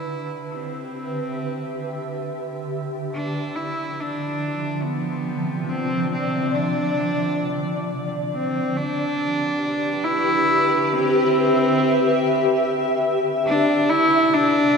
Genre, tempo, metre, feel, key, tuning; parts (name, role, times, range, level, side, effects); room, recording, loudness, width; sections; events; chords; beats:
ambient; free time; A4 = 439 Hz
rich cello; melody; 0.0-14.8 s; B3 to E4; -22 LUFS; equal; shimmer reverb, ping-pong delay
granular cloud pad; sustained chords; 0.0-14.8 s; C3 to E5; -23 LUFS; equal; built-in reverb, shimmer reverb
wet cathedral reverb, RT60 6.0 s; cassette tape; -20 LUFS; side -5 dB against mid
0.0-14.8 A section
fade-in on ambient pad 0.0-14.8; fade-in on cello 0.0-14.8
0.0 Cmaj9/D; 3.1 Dm7; 8.3 Cmaj9/D; 13.5 Dm7
free time